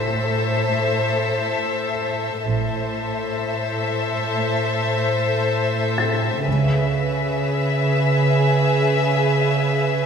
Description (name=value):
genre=cinematic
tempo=free time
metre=none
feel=none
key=unclear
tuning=A4 = 444 Hz
part: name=rich chamber violin section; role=melody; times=0.0-10.1 s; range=E5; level=-25 LUFS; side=left 3 dB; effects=none
part: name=rich studio violin section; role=second line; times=0.0-10.1 s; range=G#4 to C5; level=-23 LUFS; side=left 2 dB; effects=none
part: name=warm studio cello section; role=bass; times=0.0-10.1 s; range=A2 to C#3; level=-22 LUFS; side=right 3 dB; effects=none
part: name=impact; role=sound effects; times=0.0-2.4 s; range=none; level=barely audible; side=none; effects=none
part: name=felt-muted upright piano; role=texture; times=0.0-10.1 s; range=A4 to A6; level=-29 LUFS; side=left 3 dB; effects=none
part: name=dark studio double bass section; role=bass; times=2.4-7.4 s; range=A1 to C#2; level=-25 LUFS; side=right 3 dB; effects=none
room=wet scoring stage reverb, RT60 1.7 s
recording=heard from further back in the room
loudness=-18 LUFS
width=side -6 dB against mid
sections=0.0-10.1 A section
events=impact 0.0-2.4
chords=0.0 Am; 6.5 C#m7